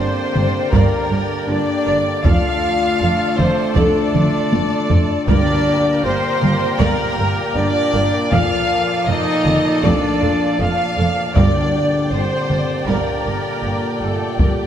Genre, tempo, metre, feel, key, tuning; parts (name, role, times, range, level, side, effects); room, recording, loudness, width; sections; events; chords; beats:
cinematic, epic orchestral film score; 79 BPM; 4/4; straight; G minor; A4 = 439 Hz
warm symphonic violin section; melody; 0.0-14.7 s; G4 to F5; -26 LUFS; left 3 dB
large flute ensemble; second line; 0.0-14.7 s; G4 to F5; -27 LUFS; right 2 dB
warm symphonic violin section; second line; 0.0-14.7 s; D5 to A5; -29 LUFS; left 2 dB
rich symphonic viola section; accompaniment; 0.0-14.7 s; Bb3 to D5; -27 LUFS; equal
clear woodwind section; sustained chords; 0.0-14.7 s; Bb3 to D5; -28 LUFS; left 2 dB
mellow French horn section; sustained chords; 0.0-14.7 s; G3 to F4; -23 LUFS; left 4 dB
warm trombone section; sustained chords; 0.0-14.7 s; Bb2 to Bb3; -26 LUFS; right 2 dB
mellow trumpet section; stabs; 0.0-14.7 s; Eb4 to F5; -24 LUFS; right 2 dB
rich symphonic double bass section; bass; 0.0-14.5 s; F1 to G1; -24 LUFS; right 3 dB
warm symphonic cello section; bass; 0.0-14.5 s; F2 to G2; -24 LUFS; right 2 dB
taiko ensemble; drums; 0.4-14.7 s; -20 LUFS; equal
timpani; percussion; 5.3-6.4, 11.4-12.5 s; G2; -23 LUFS; equal
moderate concert hall reverb, RT60 2.3 s; -15 LUFS; side -9 dB against mid
0.0-14.7 A section
drum fill 4.1-5.3
0.0 Gm; 2.2 Dm/F; 5.3 Gm; 8.3 Dm/F; 11.4 Gm
0.73 1.49 | 2.25 3.00 3.76 4.52 | 5.28 6.04 6.80 7.56 | 8.32 9.08 9.84 10.60 | 11.36 12.12 12.88 13.64 | 14.40